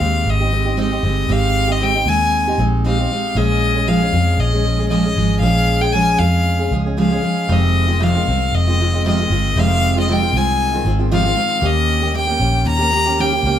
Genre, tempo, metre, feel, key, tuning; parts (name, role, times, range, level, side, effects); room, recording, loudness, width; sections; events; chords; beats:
acoustic pop; 116 BPM; 4/4; swing 55% on 16ths; Ab major; A4 = 440 Hz
bright violin; melody; 0.0-13.6 s; Eb5 to Bb5; -19 LUFS; left 2 dB
picked steel-string acoustic guitar; accompaniment; 0.0-13.6 s; F2 to Ab4; -19 LUFS; right 2 dB
vintage muted fingered electric bass; bass; 0.0-13.6 s; F1 to F2; -18 LUFS; equal
moderate large studio reverb, RT60 0.9 s; band playing live in one room; -14 LUFS; side -10 dB against mid
0.0-13.6 A section
0.0 Abmaj7; 3.4 Bbm7; 7.5 Fm7; 11.6 Eb7
0.26 0.78 | 1.29 1.81 2.33 2.84 | 3.36 3.88 4.39 4.91 | 5.42 5.94 6.46 6.97 | 7.49 8.01 8.53 9.04 | 9.56 10.08 10.59 11.11 | 11.62 12.14 12.66 13.17